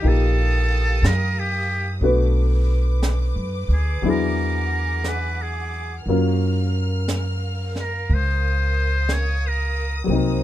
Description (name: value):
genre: jazz ballad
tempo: 60 BPM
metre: 4/4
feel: swing 67% on 8ths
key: unclear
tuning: A4 = 443 Hz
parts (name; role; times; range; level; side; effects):
- trumpet with metal mute; melody; 0.0-10.0 s; G4 to Db5; -26 LUFS; equal; none
- warm upright piano; accompaniment; 0.0-10.4 s; F3 to B4; -24 LUFS; left 3 dB; none
- warm studio string section; sustained chords; 0.0-10.4 s; G4 to F6; -33 LUFS; equal; none
- upright bass; bass; 0.0-10.4 s; Bb1 to Gb2; -21 LUFS; equal; none
- jazz brush drum kit; drums; 0.0-10.4 s; brushed snare drum, hi-hat, snare drum; -31 LUFS; right 1 dB; none
room: little or no reverb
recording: minimal, uncompressed stereo recording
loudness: -19 LUFS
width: side -13 dB against mid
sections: 0.0-10.4 A section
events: muted trumpet solo 0.0-10.4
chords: 0.0 Ebmaj9#11; 2.0 Bm7; 4.0 E9; 6.1 Gbmaj7